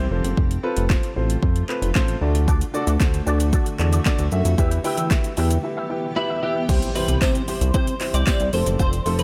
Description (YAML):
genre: dance-pop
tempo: 114 BPM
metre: 4/4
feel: straight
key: C major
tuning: A4 = 440 Hz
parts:
  - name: dark baby grand piano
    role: accompaniment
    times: 0.0-9.2 s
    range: F3 to G5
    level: -29 LUFS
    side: equal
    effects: sidechain pumping
  - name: granular cloud pad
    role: sustained chords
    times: 0.0-9.2 s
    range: C3 to G4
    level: -36 LUFS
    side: equal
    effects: built-in reverb, sidechain pumping
  - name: chorused synth bass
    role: bass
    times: 0.0-9.2 s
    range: F1 to C3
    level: -24 LUFS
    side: equal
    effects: sidechain pumping
  - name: deep house drum kit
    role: drums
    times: 0.2-9.2 s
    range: crash cymbal, handclaps, hi-hat, kick drum, shaker, snare drum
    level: -24 LUFS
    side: equal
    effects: overdrive
  - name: electric guitar with an envelope filter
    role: riff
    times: 2.5-9.2 s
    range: E4 to E5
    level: -35 LUFS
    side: equal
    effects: ensemble chorus
  - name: twelve-string electric guitar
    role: melody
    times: 6.2-9.2 s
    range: E4 to D5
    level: -29 LUFS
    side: equal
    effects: ensemble chorus, digital delay
  - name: impact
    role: sound effects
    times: 6.7-8.8 s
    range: none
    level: -36 LUFS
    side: equal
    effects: none
  - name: tambourine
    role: percussion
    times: 7.2-8.4 s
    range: none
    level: -42 LUFS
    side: equal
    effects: none
room: digital ambience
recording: none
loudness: -21 LUFS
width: mono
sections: 0.0-6.7 A section; 6.7-9.2 B section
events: break 5.6-6.7; impact 6.7-8.8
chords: 0.1 F; 2.2 D; 4.6 Em; 6.7 C; 8.5 F